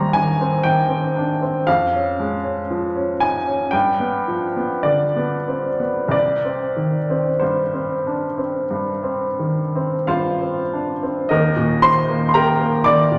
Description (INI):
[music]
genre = classical, romantic nocturne for solo piano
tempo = 41-60 BPM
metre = 4/4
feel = rubato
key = C minor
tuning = A4 = 440 Hz
[part]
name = clear upright piano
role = solo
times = 0.0-13.2 s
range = C2 to D6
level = -20 LUFS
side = equal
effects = none
[sound]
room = wet recital hall reverb, RT60 1.4 s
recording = none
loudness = -20 LUFS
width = mono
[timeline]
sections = 0.0-11.3 A section; 11.3-13.2 B section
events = none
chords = 0.0 Cm/Eb; 1.7 Db/F; 3.7 G7; 6.1 Cm; 11.3 Eb